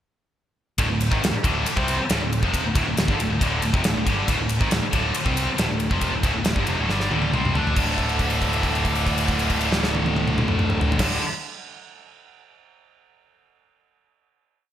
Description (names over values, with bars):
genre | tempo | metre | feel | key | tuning
hard rock | 138 BPM | 4/4 | straight | D minor | A4 = 440 Hz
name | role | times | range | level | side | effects
heavy high-gain guitar | riff | 0.8-11.2 s | D2 to D4 | -26 LUFS | right 1 dB | distortion
heavy high-gain guitar | riff | 0.8-11.2 s | D2 to D4 | -26 LUFS | left 2 dB | distortion
picked electric bass | bass | 0.8-11.2 s | D1 to D2 | -27 LUFS | equal | none
gated 80s drum kit | drums | 0.8-11.1 s | crash cymbal, kick drum, ride cymbal, snare drum, toms | -24 LUFS | equal | gated reverb
room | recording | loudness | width
light reverb, small room ambience | bright 1980s-style digital production | -20 LUFS | side -10 dB against mid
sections
0.8-7.8 riff; 7.8-11.3 final chord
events
drum fill 6.9-7.8; held note 7.8-11.0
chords
0.8 Dm; 7.8 D5